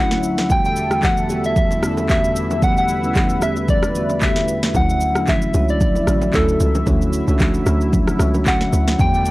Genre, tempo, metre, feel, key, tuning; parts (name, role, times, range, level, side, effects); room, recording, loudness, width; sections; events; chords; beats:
amapiano; 113 BPM; 4/4; swing 55% on 16ths; D major; A4 = 440 Hz
soft struck synth lead; melody; 0.0-9.3 s; A4 to G5; -21 LUFS; equal; chorus
bell-like tine electric piano; accompaniment; 0.0-9.3 s; E2 to G4; -21 LUFS; left 1 dB
warm analog pad; sustained chords; 0.0-9.3 s; D2 to E5; -27 LUFS; right 1 dB; chorus, sidechain pumping
afro-pop drum kit; drums; 0.1-9.3 s; handclaps, kick drum, rim click, shaker, snare drum; -20 LUFS; equal
bongos and congas; percussion; 0.4-9.1 s; -26 LUFS; right 1 dB
hollow log drum bass; bass; 4.7-9.3 s; A1 to E2; -19 LUFS; equal
noise sweep; sound effects; 9.1-9.3 s; -38 LUFS; right 1 dB
little or no reverb; dry, gritty hardware recording; -15 LUFS; side -18 dB against mid
0.0-9.3 A section
0.5 Em11; 4.7 Dmaj9
| 0.50 1.03 1.56 2.09 | 2.62 3.15 3.69 4.22 | 4.75 5.28 5.81 6.34 | 6.87 7.40 7.93 8.46 | 8.99